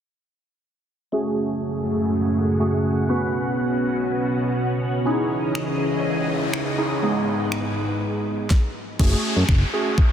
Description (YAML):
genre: dance-pop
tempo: 122 BPM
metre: 4/4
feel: straight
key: F# dorian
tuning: A4 = 440 Hz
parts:
  - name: glassy digital keys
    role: accompaniment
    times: 1.1-10.0 s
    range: G#3 to B4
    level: -24 LUFS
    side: right 1 dB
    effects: chorus, sidechain pumping, low-pass filter
  - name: string machine, full ensemble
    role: sustained chords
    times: 1.1-8.5 s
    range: F#2 to F#5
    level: -24 LUFS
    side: equal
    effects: ensemble chorus, sidechain pumping, low-pass filter
  - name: noise sweep and downlifter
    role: sound effects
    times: 5.4-10.1 s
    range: none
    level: -30 LUFS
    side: equal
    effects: none
  - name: pop drum kit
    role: drums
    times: 5.6-10.1 s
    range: crash cymbal, finger snaps, kick drum, snare drum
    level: -23 LUFS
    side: equal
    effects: none
  - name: chorused synth bass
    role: bass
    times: 9.0-9.6 s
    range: F#1 to F#2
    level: -19 LUFS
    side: equal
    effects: sidechain pumping
room: moderate huge ambient reverb, RT60 4.5 s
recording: dreamy mix soaked in reverb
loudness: -20 LUFS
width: side -9 dB against mid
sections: 1.1-9.0 A section; 9.0-10.1 B section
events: filter sweep 1.1-9.0; noise sweep 5.4-9.0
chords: 1.1 F#madd9; 3.1 Bsus2; 5.1 C#madd9; 7.0 G#m; 9.0 F#madd9